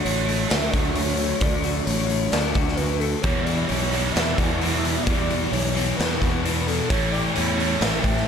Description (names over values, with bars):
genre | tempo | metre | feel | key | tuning
rock, shoegaze and dream pop | 132 BPM | 4/4 | straight | D major | A4 = 440 Hz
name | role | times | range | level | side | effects
warm velvety synth lead | melody | 0.0-8.3 s | A4 to E5 | -29 LUFS | equal | chorus, analog delay
direct-recorded clean electric guitar | arpeggios | 0.0-8.3 s | E3 to G4 | -34 LUFS | left 11 dB | lush chorus, analog delay
biting overdriven guitar | riff | 0.0-8.3 s | A2 to F#4 | -29 LUFS | right 12 dB | reverse reverb
thick fuzz guitar | riff | 0.0-8.3 s | E2 to D4 | -28 LUFS | left 12 dB | distortion, analog chorus
fuzz fingered electric bass | bass | 0.1-8.3 s | A1 to E2 | -26 LUFS | right 1 dB | overdrive
raw garage drum kit | drums | 0.1-8.2 s | hi-hat, kick drum, snare drum | -25 LUFS | equal | none
distorted electric guitar | riff | 3.2-8.3 s | E2 to A3 | -28 LUFS | right 1 dB | overdrive
room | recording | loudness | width
small room ambience | none | -20 LUFS | side -7 dB against mid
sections
0.0-8.3 A section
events
none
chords
0.0 Dmaj7; 3.3 Em9; 6.9 A7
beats
0.06 0.52 0.97 | 1.43 1.88 2.34 2.79 | 3.25 3.71 4.16 4.62 | 5.08 5.53 5.99 6.44 | 6.90 7.36 7.81 8.27